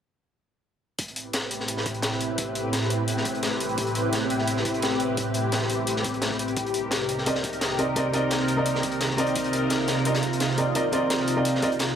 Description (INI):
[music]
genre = liquid drum and bass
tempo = 172 BPM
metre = 4/4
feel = straight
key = unclear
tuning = A4 = 440 Hz
[part]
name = lush unison pad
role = sustained chords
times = 1.3-12.0 s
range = A2 to B4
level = -26 LUFS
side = equal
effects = chorus, phaser
[part]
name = crunchy breakbeat drum kit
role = drums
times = 1.0-12.0 s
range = hi-hat, snare drum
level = -29 LUFS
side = left 1 dB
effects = high-pass filter on hats, high-pass filter on snare, high-pass filter on room
[part]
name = electronic hi-hat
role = drums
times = 1.0-11.9 s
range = none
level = -34 LUFS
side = left 1 dB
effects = none
[part]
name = electronic kick drum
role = drums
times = 1.0-11.7 s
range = none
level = -38 LUFS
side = equal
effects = none
[part]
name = felt-muted upright piano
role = accompaniment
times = 7.3-11.7 s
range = C4 to Eb5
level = -25 LUFS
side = right 1 dB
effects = digital delay
[sound]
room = moderate plate reverb, RT60 1.1 s, small room ambience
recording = none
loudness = -23 LUFS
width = side -8 dB against mid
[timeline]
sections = 1.0-12.0 A section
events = kick drops out 11.8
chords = 1.0 Am9; 6.6 Cm9